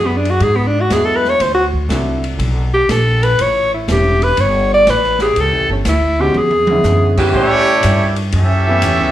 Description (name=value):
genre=jazz, big band swing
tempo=121 BPM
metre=4/4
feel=swing 68% on 8ths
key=unclear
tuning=A4 = 441 Hz
part: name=clear alto saxophone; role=melody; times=0.0-7.2 s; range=B3 to D5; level=-14 LUFS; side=equal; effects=plate reverb, slapback echo
part: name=mellow saxophone section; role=sustained chords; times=0.0-7.8 s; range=E3 to A4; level=-22 LUFS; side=equal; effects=plate reverb
part: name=upright bass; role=bass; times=0.0-9.1 s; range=E1 to A2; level=-17 LUFS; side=equal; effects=none
part: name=open jazz drum kit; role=drums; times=0.3-9.0 s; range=crash cymbal, hi-hat, kick drum, ride cymbal, snare drum, toms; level=-24 LUFS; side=left 1 dB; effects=none
part: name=warm concert grand piano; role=accompaniment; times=0.9-9.1 s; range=D3 to G4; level=-21 LUFS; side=equal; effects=slapback echo
part: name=bright trumpet section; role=melody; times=7.3-9.1 s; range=A3 to E5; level=-15 LUFS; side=right 2 dB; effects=plate reverb, slapback echo
part: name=muted trombone section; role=second line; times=7.3-9.1 s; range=E3 to G4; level=-20 LUFS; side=right 2 dB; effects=plate reverb, slapback echo
room=moderate club reverb, RT60 0.6 s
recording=live gig heard through the venue's PA, club reverb, faint mains hum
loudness=-12 LUFS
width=side -12 dB against mid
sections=0.0-7.3 A section; 7.3-9.1 B section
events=alto saxophone solo 0.0-7.3; drum fill 6.4-6.9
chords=0.0 E7; 1.4 D7; 3.4 E13; 7.3 A7